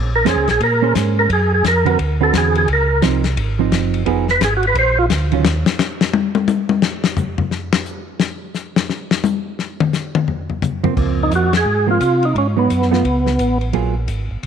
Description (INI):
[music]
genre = soul jazz organ trio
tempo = 174 BPM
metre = 4/4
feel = swing 63% on 8ths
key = Db major from 11.0 s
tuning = A4 = 440 Hz
[part]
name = mellow tonewheel organ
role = bass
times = 0.0-5.7, 11.0-14.5 s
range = F1 to C3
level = -18 LUFS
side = right 1 dB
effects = slow rotary speaker
[part]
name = overdriven tonewheel organ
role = melody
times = 0.2-5.1, 11.2-13.6 s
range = Cb4 to C5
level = -17 LUFS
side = right 1 dB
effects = slow rotary speaker, chorus vibrato
[part]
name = hollow-body jazz guitar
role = accompaniment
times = 0.3-5.4, 10.8-13.9 s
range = D3 to C5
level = -21 LUFS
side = right 14 dB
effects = none
[part]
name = warm soul drum kit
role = drums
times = 0.3-14.5 s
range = crash cymbal, hi-hat, kick drum, ride cymbal, snare drum, toms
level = -20 LUFS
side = left 6 dB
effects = none
[sound]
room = moderate plate reverb, RT60 2.2 s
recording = 1960s-style stereo with parts hard left and right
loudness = -14 LUFS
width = side -7 dB against mid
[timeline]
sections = 0.0-11.0 A section; 11.0-14.5 B section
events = tonewheel organ solo 0.0-11.0; drum solo 5.4-11.0; band accent 11.5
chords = 0.0 Bbm9; 1.3 Bb7b9b13; 2.0 D13; 2.7 Dbmaj9; 4.1 Fm7b5; 4.8 Bb; 5.4 N.C.; 10.3 Fsus4; 11.0 Db6; 12.4 Abm7; 13.0 Aadd9; 13.7 Gbmaj9